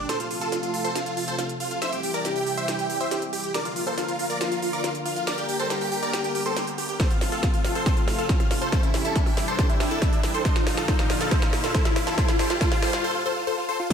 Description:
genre	uplifting trance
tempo	139 BPM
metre	4/4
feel	straight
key	F major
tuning	A4 = 441 Hz
part	big supersaw lead	melody	0.0-13.9 s	E4 to E5	-26 LUFS	equal	phaser, sidechain pumping, dub echo
part	lush unison pad	sustained chords	0.0-13.9 s	Bb2 to Bb4	-32 LUFS	equal	chorus, sidechain pumping
part	techno drum kit	drums	0.1-13.9 s	crash cymbal, hi-hat, percussion blips, snare drum	-31 LUFS	equal	high-pass filter on snare, high-pass filter on hats, high-pass filter on perc, high-pass filter on cymbals, high-pass filter on room
part	riser and downlifter	sound effects	3.0-13.9 s	none	-33 LUFS	left 1 dB	none
part	electronic kick drum	drums	7.0-13.9 s	none	-23 LUFS	equal	none
room	moderate digital room reverb, RT60 1.1 s, digital ambience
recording	none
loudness	-22 LUFS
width	side -7 dB against mid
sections	0.1-13.9 A section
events	build-up 0.1-13.9; drum fill 0.1-13.0; riser 3.0-13.0; break 13.0-13.9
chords	0.1 F; 1.8 C; 3.5 Bb; 5.3 Gm; 7.0 F; 8.7 C; 10.5 Bb; 12.2 Gm

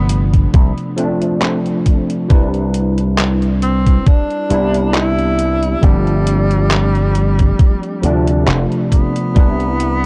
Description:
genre	vaporwave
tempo	68 BPM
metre	4/4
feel	swing 54% on 16ths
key	C major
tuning	A4 = 440 Hz
part	breathy tenor saxophone	melody	0.0-10.1 s	G3 to E4	-23 LUFS	equal	tape echo
part	bell-like tine electric piano	accompaniment	0.0-10.1 s	C3 to B4	-21 LUFS	equal	ensemble chorus, tape echo
part	slap bass with an envelope filter	bass	0.0-10.1 s	F1 to D2	-18 LUFS	equal	none
part	detuned 8-bit digital drum machine	drums	0.1-10.0 s	handclaps, hi-hat	-25 LUFS	equal	overdrive
part	electronic kick drum	drums	0.3-9.6 s	none	-13 LUFS	equal	overdrive
room	digital ambience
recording	dark, warm production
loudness	-15 LUFS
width	mono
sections	0.0-10.1 A section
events	none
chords	0.0 G7sus4; 2.3 Cmaj9; 5.8 G7sus4; 9.4 Cmaj9

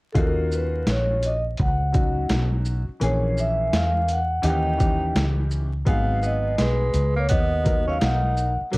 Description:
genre	hip hop, jazz-hop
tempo	84 BPM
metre	4/4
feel	swing 65% on 16ths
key	Eb minor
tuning	A4 = 440 Hz
part	vibraphone with soft mallets	melody	0.1-8.8 s	A4 to G5	-25 LUFS	equal	slapback echo, plate reverb
part	warm upright piano	accompaniment	0.1-8.8 s	Fb3 to Bb4	-30 LUFS	left 2 dB	plate reverb
part	woody fretless electric bass	bass	0.2-8.8 s	Ab1 to Fb2	-24 LUFS	equal	tube saturation
part	boom bap sampler-style drum kit	drums	0.2-8.8 s	hi-hat, kick drum, shaker, snare drum	-24 LUFS	equal	overdrive
part	mellow tenor saxophone	second line	4.4-8.8 s	F#3 to Eb4	-30 LUFS	right 2 dB	plate reverb
room	light reverb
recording	worn, warbling old tape, cassette tape, vinyl crackle, warbly pitch drift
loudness	-20 LUFS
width	side -23 dB against mid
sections	0.2-8.8 A section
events	none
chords	0.2 Ebm9; 3.0 Bbm7b5; 4.4 Eb7b9; 5.9 Abm7

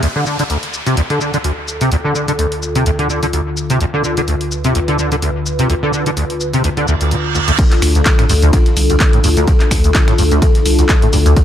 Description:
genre	acid house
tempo	127 BPM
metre	4/4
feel	swing 55% on 16ths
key	D dorian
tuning	A4 = 440 Hz
part	warm analog pad	sustained chords	0.0-11.4 s	D2 to B4	-19 LUFS	left 2 dB	chorus, sidechain pumping
part	liquid acid bass	riff	0.0-11.4 s	D2 to D3	-16 LUFS	equal	ensemble chorus, ping-pong delay
part	punchy analog drum machine	drums	0.0-11.4 s	crash cymbal, finger snaps, handclaps, hi-hat, shaker	-21 LUFS	left 1 dB	none
part	downlifter and reverse cymbal	sound effects	0.0-3.8, 6.9-7.6 s	none	-24 LUFS	right 4 dB	none
part	dusty soul sampler-style drum kit	drums	7.6-11.4 s	ride cymbal, snare drum	-32 LUFS	right 3 dB	none
part	electronic kick drum	drums	7.6-11.4 s	none	-12 LUFS	equal	none
part	saturated sub bass	bass	7.8-11.3 s	C2 to D2	-14 LUFS	equal	sidechain pumping
room	light reverb, digital ambience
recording	none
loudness	-12 LUFS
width	side -10 dB against mid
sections	0.0-7.6 A section; 7.6-11.4 B section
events	filter sweep on analog synth pad 0.0-7.6; reverse cymbal 6.9-7.6; drop 7.6-11.4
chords	0.0 Dm

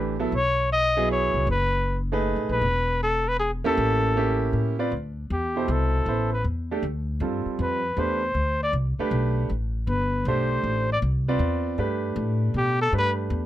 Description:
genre	modal jazz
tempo	157 BPM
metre	3/4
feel	swing 66% on 8ths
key	D dorian from 4.9 s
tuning	A4 = 440 Hz
part	breathy trumpet	melody	0.0-13.1 s	G4 to D#5	-24 LUFS	left 1 dB	none
part	clear grand piano	accompaniment	0.0-13.5 s	B2 to D5	-27 LUFS	right 3 dB	none
part	upright bass	bass	0.0-13.5 s	E1 to B2	-26 LUFS	left 1 dB	none
room	little or no reverb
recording	close, detailed microphones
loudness	-22 LUFS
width	side -13 dB against mid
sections	0.0-4.9 A section; 4.9-13.5 B section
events	trumpet solo 4.9-13.5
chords	0.3 B9sus4; 3.8 A7b9; 4.9 D13sus4

